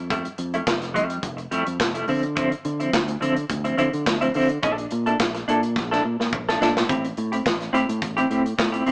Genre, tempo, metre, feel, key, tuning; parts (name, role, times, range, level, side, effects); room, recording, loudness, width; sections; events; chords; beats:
disco; 106 BPM; 4/4; straight; D minor; A4 = 441 Hz
fingered electric bass; bass; 0.0-8.9 s; E1 to D3; -27 LUFS; equal
clean electric guitar; accompaniment; 0.1-8.9 s; F3 to A4; -23 LUFS; equal; tremolo
modern studio drum kit; drums; 0.1-8.9 s; handclaps, hi-hat, kick drum, snare drum; -25 LUFS; equal
light reverb; band playing live in one room, small speaker sound; -20 LUFS; side -30 dB against mid
0.0-6.9 A section; 6.9-8.9 B section
drum fill 5.8-6.9
0.0 Fmaj9; 2.1 Dm9; 4.6 Bbmaj7#11; 6.9 Am7
| 0.10 0.67 1.24 1.80 | 2.37 2.93 3.50 4.07 | 4.63 5.20 5.76 6.33 | 6.89 7.46 8.02 8.59